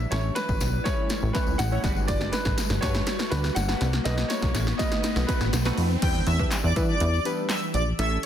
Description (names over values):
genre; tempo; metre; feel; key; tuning
dance-pop; 122 BPM; 4/4; straight; E dorian; A4 = 440 Hz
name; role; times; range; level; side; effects
clear baby grand piano; melody; 0.0-5.5 s; B4 to F#5; -31 LUFS; equal; ping-pong delay
ethereal airy pad; sustained chords; 0.0-8.3 s; E3 to B4; -35 LUFS; equal; ensemble chorus, built-in reverb, sidechain pumping
plucky analog bass; bass; 0.0-8.2 s; G1 to E3; -25 LUFS; equal; sidechain pumping
riser; sound effects; 0.0-6.0 s; none; -35 LUFS; left 1 dB; none
warm analog keys; accompaniment; 0.1-8.2 s; G3 to C#5; -33 LUFS; right 1 dB; chorus, phaser, sidechain pumping
punchy analog drum machine; drums; 0.1-8.3 s; crash cymbal, handclaps, hi-hat, kick drum, snare drum; -28 LUFS; equal; none
tambourine; percussion; 0.1-8.1 s; none; -41 LUFS; left 8 dB; none
airy dreamy lead; melody; 6.0-8.3 s; D5 to G5; -29 LUFS; equal; chorus, sidechain pumping
room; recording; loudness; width
light reverb; dense, heavily limited modern master; -22 LUFS; side -10 dB against mid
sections
0.0-6.0 A section; 6.0-8.3 B section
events
build-up 0.0-6.0; drum fill 0.0-6.0; riser 0.0-6.0; drop 6.0-8.3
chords
0.1 A; 1.8 Gmaj7; 4.1 B7; 6.0 Em7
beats
| 0.12 0.61 1.10 1.60 | 2.09 2.58 3.07 3.56 | 4.05 4.55 5.04 5.53 | 6.02 6.51 7.00 7.50 | 7.99